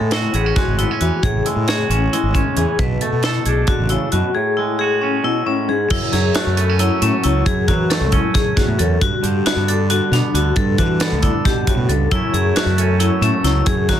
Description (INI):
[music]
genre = math rock and midwest emo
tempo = 270 BPM (eighths)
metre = 7/8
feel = straight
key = unclear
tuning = A4 = 440 Hz
[part]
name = twangy electric guitar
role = accompaniment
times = 0.0-14.0 s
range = E2 to A4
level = -22 LUFS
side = right 9 dB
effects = plate reverb
[part]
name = vibraphone with hard mallets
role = arpeggios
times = 0.0-14.0 s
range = C#4 to B4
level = -20 LUFS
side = left 8 dB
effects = plate reverb
[part]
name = fuzz fingered electric bass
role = bass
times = 0.0-14.0 s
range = G#1 to E3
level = -19 LUFS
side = equal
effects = overdrive
[part]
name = crisp fusion drum kit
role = drums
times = 0.1-14.0 s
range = crash cymbal, hi-hat, kick drum, snare drum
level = -20 LUFS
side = right 1 dB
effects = soft clipping on kick
[sound]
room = light reverb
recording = dense, heavily limited modern master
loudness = -15 LUFS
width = side -10 dB against mid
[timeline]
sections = 0.0-5.9 A section; 5.9-14.0 B section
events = none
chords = 0.0 Amaj7; 2.8 Bm7; 4.4 Amaj7; 5.9 F#m7; 9.0 Gmaj9; 12.1 F#m7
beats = 0.12 0.35 0.57 0.79 1.01 | 1.24 1.46 1.68 1.91 2.13 2.35 2.57 | 2.80 3.02 3.24 3.46 3.69 3.91 4.13 | 4.35 4.58 4.80 5.02 5.24 5.46 5.69 | 5.91 6.13 6.35 6.58 6.80 7.02 7.24 | 7.46 7.68 7.91 8.13 8.35 8.57 8.79 | 9.02 9.24 9.46 9.68 9.90 10.12 10.35 | 10.57 10.79 11.01 11.23 11.45 11.68 11.90 | 12.12 12.34 12.56 12.78 13.01 13.23 13.45 | 13.67 13.89